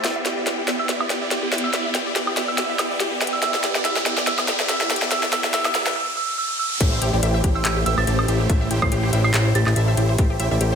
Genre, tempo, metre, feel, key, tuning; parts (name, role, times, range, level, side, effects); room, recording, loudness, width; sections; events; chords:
future bass; 142 BPM; 4/4; swing 55% on 16ths, half-time; A minor; A4 = 442 Hz
wide unison pluck; arpeggios; 0.0-10.8 s; G4 to E5; -30 LUFS; left 2 dB; sidechain pumping, dub echo
supersaw chords; riff; 0.0-10.8 s; A3 to A5; -25 LUFS; right 1 dB; phaser, sidechain pumping
trap drum kit; drums; 0.0-10.7 s; crash cymbal, handclaps, hi-hat, snare drum, woodblock; -24 LUFS; equal; high-pass filter on snare, small room ambience, high-pass filter on hats, high-pass filter on perc, high-pass filter on cymbals
riser; sound effects; 0.0-6.8 s; -27 LUFS; equal
soft synth bell; melody; 0.8-9.7 s; E6 to C7; -28 LUFS; right 3 dB; chorus, sidechain pumping, dub echo
fat analog bass; bass; 6.8-10.8 s; A1; -20 LUFS; equal; sidechain pumping
electronic kick drum; drums; 6.8-10.3 s; -20 LUFS; equal; small room ambience
moderate digital room reverb, RT60 1.2 s, digital ambience; high-pass filter; -18 LUFS; side -7 dB against mid
0.0-6.8 A section; 6.8-10.8 B section
build-up 0.0-6.8; drum fill 0.0-6.0; riser 0.0-6.8; filter sweep on supersaw synth 0.0-6.8; filter sweep on synth arpeggio sound 0.0-6.8; break 6.0-6.8; drop 6.8-10.8
0.0 G6/B; 6.8 Am7